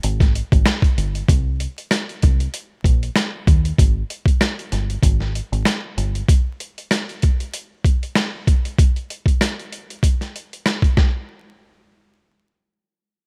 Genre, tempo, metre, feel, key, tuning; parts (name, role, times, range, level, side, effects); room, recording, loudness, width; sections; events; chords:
hip hop, boom-bap hip-hop; 96 BPM; 4/4; swing 56% on 16ths; C minor; A4 = 442 Hz
deep dub fingered electric bass; bass; 0.0-6.2 s; G1 to Eb2; -23 LUFS; equal
boom bap sampler-style drum kit; drums; 0.0-11.1 s; hi-hat, kick drum, rim click, snare drum; -19 LUFS; equal
little or no reverb; rough home demo mix, vinyl crackle; -19 LUFS; mono
0.0-1.3 A section; 1.3-11.3 B section; 11.3-13.3 C section